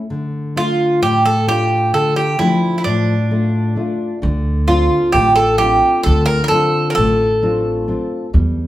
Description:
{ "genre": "greek folk", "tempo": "131 BPM (eighths)", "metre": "9/8", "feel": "straight", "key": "D minor", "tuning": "A4 = 440 Hz", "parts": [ { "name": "nylon-string guitar", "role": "accompaniment", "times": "0.1-8.7 s", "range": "A2 to F4", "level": "-19 LUFS", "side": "left 2 dB", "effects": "none" }, { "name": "Greek bouzouki", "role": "melody", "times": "0.6-8.3 s", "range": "D4 to Bb4", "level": "-15 LUFS", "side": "right 1 dB", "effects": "none" }, { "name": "upright bass", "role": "bass", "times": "4.2-8.7 s", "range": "A1 to E2", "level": "-17 LUFS", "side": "equal", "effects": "none" } ], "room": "wet large studio reverb, RT60 1.1 s", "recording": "band playing live in one room", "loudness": "-13 LUFS", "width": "side -14 dB against mid", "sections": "0.0-4.2 A section; 4.2-8.7 A section", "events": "none", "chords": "0.1 Dm; 4.2 Dm7" }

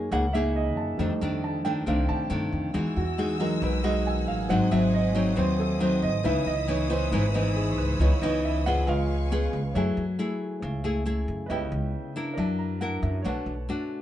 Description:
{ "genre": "bossa nova", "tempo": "137 BPM", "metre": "4/4", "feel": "straight", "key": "C# minor, F# minor from 9.7 s", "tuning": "A4 = 440 Hz", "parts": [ { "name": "nylon-string guitar", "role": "accompaniment", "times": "0.0-14.0 s", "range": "F2 to A#4", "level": "-27 LUFS", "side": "left 2 dB", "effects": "none" }, { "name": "warm grand piano", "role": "accompaniment", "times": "0.0-14.0 s", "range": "E3 to A#5", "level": "-30 LUFS", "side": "right 3 dB", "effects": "none" }, { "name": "upright bass", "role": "bass", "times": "0.0-13.7 s", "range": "G#1 to A2", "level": "-29 LUFS", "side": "equal", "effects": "none" }, { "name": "warm symphonic string section", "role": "sustained chords", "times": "2.7-9.7 s", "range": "D#4 to E6", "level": "-37 LUFS", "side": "left 2 dB", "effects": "none" } ], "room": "light reverb", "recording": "band playing live in one room, nothing above 10.8 kHz", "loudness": "-24 LUFS", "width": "side -12 dB against mid", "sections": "0.0-9.7 A section; 9.7-14.0 B section", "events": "grand piano solo 0.0-9.7; grand piano fill 12.4-13.2", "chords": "0.0 F#69; 1.0 F13; 2.7 Emaj9; 4.5 G#7; 6.2 C#m9; 8.9 C#7; 9.7 F#m9; 11.5 C#m7b5; 12.4 F#7alt; 13.2 Bm7" }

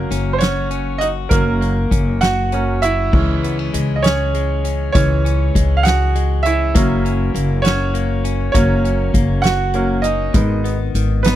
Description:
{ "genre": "six-eight pop ballad", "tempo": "66 BPM (dotted quarters)", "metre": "6/8", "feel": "straight", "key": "unclear", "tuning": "A4 = 440 Hz", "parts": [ { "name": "bright concert grand piano", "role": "accompaniment", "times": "0.0-11.4 s", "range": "E3 to F#5", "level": "-19 LUFS", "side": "right 4 dB", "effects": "none" }, { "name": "direct-recorded clean electric guitar", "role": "arpeggios", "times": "0.0-11.4 s", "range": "D#3 to G#4", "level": "-25 LUFS", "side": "left 16 dB", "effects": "none" }, { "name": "upright bass", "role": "bass", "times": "0.0-11.4 s", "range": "F#1 to C#2", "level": "-18 LUFS", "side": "left 1 dB", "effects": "none" }, { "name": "soft-mallet drum kit", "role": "drums", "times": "0.1-11.4 s", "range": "crash cymbal, hi-hat, kick drum, snare drum", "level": "-19 LUFS", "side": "equal", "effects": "none" } ], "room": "little or no reverb", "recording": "dry, close 1970s-style studio recording", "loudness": "-14 LUFS", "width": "side -12 dB against mid", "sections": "0.0-3.1 A section; 3.1-11.4 B section", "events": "grand piano solo 0.0-3.1, 3.1-11.4", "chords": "0.0 F#; 3.1 C#m; 6.8 F#; 10.3 G#m" }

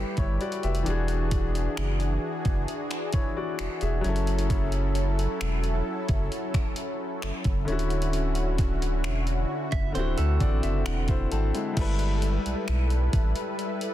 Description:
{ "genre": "contemporary R&B", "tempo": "66 BPM", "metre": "4/4", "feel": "straight", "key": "unclear", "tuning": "A4 = 440 Hz", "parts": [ { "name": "clear baby grand piano", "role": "accompaniment", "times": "0.0-13.9 s", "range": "D3 to A5", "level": "-32 LUFS", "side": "left 4 dB", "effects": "none" }, { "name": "lush unison pad", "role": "sustained chords", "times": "0.0-13.9 s", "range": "D3 to B4", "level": "-32 LUFS", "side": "equal", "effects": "chorus" }, { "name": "saturated sub bass", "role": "bass", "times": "0.0-13.3 s", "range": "D1 to D2", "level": "-26 LUFS", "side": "equal", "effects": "none" }, { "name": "detuned 8-bit digital drum machine", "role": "drums", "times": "0.2-13.9 s", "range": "crash cymbal, finger snaps, hi-hat, kick drum", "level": "-30 LUFS", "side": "equal", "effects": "overdrive, soft clipping on snare" }, { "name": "direct-recorded clean electric guitar", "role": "arpeggios", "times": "9.7-11.5 s", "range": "A4 to E5", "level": "-36 LUFS", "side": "right 8 dB", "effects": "ping-pong delay" } ], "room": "digital ambience", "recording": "dense, heavily limited modern master", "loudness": "-24 LUFS", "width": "side -13 dB against mid", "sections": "0.0-11.8 A section; 11.8-13.9 B section", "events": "grand piano fill 10.0-11.8", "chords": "0.0 G69; 0.9 E9; 4.0 F#m7; 7.7 Dmaj9; 10.0 D9; 11.8 G69" }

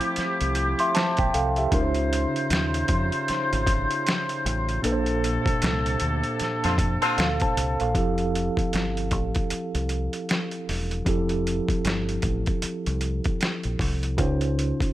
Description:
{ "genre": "R&B, neo-soul", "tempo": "77 BPM", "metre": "4/4", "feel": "swing 62% on 16ths", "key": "F major", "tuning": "A4 = 444 Hz", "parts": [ { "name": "mellow tine electric piano", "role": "accompaniment", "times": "0.0-14.9 s", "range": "Bb2 to C6", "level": "-27 LUFS", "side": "right 1 dB", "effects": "medium stereo tremolo" }, { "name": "warm woodwind section", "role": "sustained chords", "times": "0.0-7.9 s", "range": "C3 to C5", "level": "-28 LUFS", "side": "left 1 dB", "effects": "none" }, { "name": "boom bap sampler-style drum kit", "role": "drums", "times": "0.0-14.9 s", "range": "hi-hat, kick drum, snare drum", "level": "-27 LUFS", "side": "equal", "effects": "overdrive" }, { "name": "deep dub fingered electric bass", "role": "bass", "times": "0.2-14.7 s", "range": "E1 to F2", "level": "-27 LUFS", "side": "equal", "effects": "none" }, { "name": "warm horn section", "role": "stabs", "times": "6.6-7.3 s", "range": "D3 to F4", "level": "-25 LUFS", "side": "left 1 dB", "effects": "none" } ], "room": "little or no reverb", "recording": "none", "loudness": "-22 LUFS", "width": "side -14 dB against mid", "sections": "0.0-7.9 A section; 7.9-14.9 B section", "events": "band accent 4.8-7.9", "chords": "0.0 Fmaj9; 1.7 Dbmaj9; 4.8 Bbmaj9; 7.9 Fmaj9; 14.2 Dbmaj9" }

